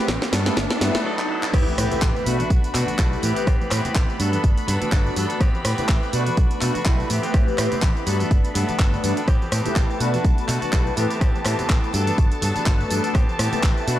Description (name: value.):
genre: filtered disco house.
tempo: 124 BPM.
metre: 4/4.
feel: swing 56% on 16ths.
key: A dorian.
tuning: A4 = 440 Hz.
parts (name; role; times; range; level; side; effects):
mellow synth brass; accompaniment; 0.0-14.0 s; A3 to B4; -27 LUFS; left 1 dB; chorus, phaser, sidechain pumping.
string machine, full ensemble; sustained chords; 0.0-14.0 s; A5 to B5; -32 LUFS; equal; ensemble chorus, sidechain pumping.
direct-recorded clean electric guitar; riff; 0.0-14.0 s; E3 to A4; -29 LUFS; equal; vintage 12-bit sampler grit, sidechain pumping.
riser and impact; sound effects; 0.0-3.5 s; none; -30 LUFS; right 1 dB; none.
fingered electric bass; bass; 0.1-14.0 s; G1 to B2; -25 LUFS; equal; sidechain pumping.
electronic kick drum; drums; 0.1-13.7 s; none; -19 LUFS; equal; high-pass filter on kick, high-pass filter on room.
house drum kit; drums; 0.1-14.0 s; crash cymbal, handclaps, hi-hat, rim click, snare drum, tambourine; -27 LUFS; equal; sidechain pumping on hats, sidechain pumping on perc, sidechain pumping on cymbals.
tambourine and congas; percussion; 1.5-14.0 s; none; -35 LUFS; left 1 dB; none.
room: digital ambience.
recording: dry, gritty hardware recording, cassette tape.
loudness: -18 LUFS.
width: side -13 dB against mid.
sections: 0.0-1.5 A section; 1.5-14.0 B section.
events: build-up 0.0-1.5; drum fill 0.0-1.1, 1.2-1.5; riser 0.0-1.5; filter sweep 0.0-1.5; break 1.1-1.5; drop 1.5-14.0; impact 1.5-3.5.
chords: 0.3 Gmaj9; 1.5 Am9; 2.3 Bm7; 3.2 Am9; 4.2 Gmaj9; 5.4 Am9; 6.1 Bm7; 7.1 Am9; 8.1 Gmaj9; 9.3 Am9; 10.0 Bm7; 11.0 Am9; 11.9 Gmaj9; 13.1 Am9.